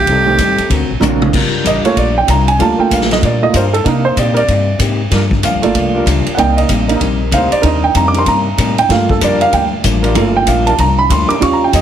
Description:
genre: jazz, big band swing.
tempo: 190 BPM.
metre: 4/4.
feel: swing 63% on 8ths.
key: G minor.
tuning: A4 = 441 Hz.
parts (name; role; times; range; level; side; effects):
edgy tenor saxophone; melody; 0.0-0.7 s; G4; -14 LUFS; right 3 dB; none.
upright bass; bass; 0.0-11.8 s; G1 to C3; -16 LUFS; left 1 dB; none.
hollow-body jazz guitar; accompaniment; 0.1-11.8 s; G2 to A#4; -21 LUFS; left 5 dB; none.
warm trombone section; sustained chords; 0.1-11.4 s; G3 to C5; -22 LUFS; left 2 dB; none.
swinging big-band drum kit; drums; 0.1-11.8 s; crash cymbal, hi-hat, kick drum, ride cymbal, snare drum, toms; -18 LUFS; equal; none.
clear upright piano; accompaniment; 0.3-11.8 s; D3 to D6; -14 LUFS; right 4 dB; none.
room: light reverb.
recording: heavily compressed radio sound, multiband compression.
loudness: -10 LUFS.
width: side -9 dB against mid.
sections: 0.0-1.3 A section; 1.3-11.8 A section.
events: tenor saxophone solo 0.0-1.3; drum fill 1.0-1.3; upright piano solo 1.3-11.8.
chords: 0.1 Am7b5; 0.7 Daug7; 1.3 Gm7; 3.9 Cm7; 5.1 Gm7; 6.4 Cm7; 8.9 Gm7.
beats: | 0.07 0.39 0.70 1.02 | 1.33 1.65 1.96 2.28 | 2.59 2.91 3.22 3.54 | 3.85 4.17 4.48 4.79 | 5.11 5.42 5.74 6.06 | 6.37 6.69 7.00 7.32 | 7.63 7.95 8.26 8.58 | 8.89 9.21 9.52 9.84 | 10.15 10.47 10.78 11.10 | 11.41 11.73.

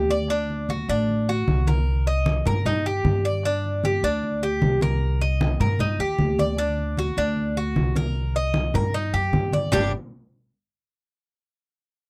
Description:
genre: latin, Cuban son and guajira.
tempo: 153 BPM.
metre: 4/4.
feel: straight.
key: G harmonic minor from 3.4 s.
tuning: A4 = 441 Hz.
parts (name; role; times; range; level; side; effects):
Cuban tres; arpeggios; 0.0-9.9 s; G3 to Eb5; -27 LUFS; equal; none.
upright bass; bass; 0.0-9.9 s; G1 to G2; -27 LUFS; equal; none.
congas; percussion; 0.3-9.8 s; none; -29 LUFS; equal; none.
room: light reverb.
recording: dry, close 1970s-style studio recording.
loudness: -23 LUFS.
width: mono.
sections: 0.0-3.4 A section; 3.4-9.7 B section; 9.7-11.3 C section.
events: none.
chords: 0.3 D7; 1.9 Cm7; 3.4 Gm; 5.0 Cm7; 6.6 D7; 8.2 Cm7; 9.7 G5.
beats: | 0.30 0.69 1.09 1.48 | 1.87 2.27 2.66 3.05 | 3.44 3.84 4.23 4.62 | 5.01 5.41 5.80 6.19 | 6.58 6.98 7.37 7.76 | 8.16 8.55 8.94 9.33 | 9.73.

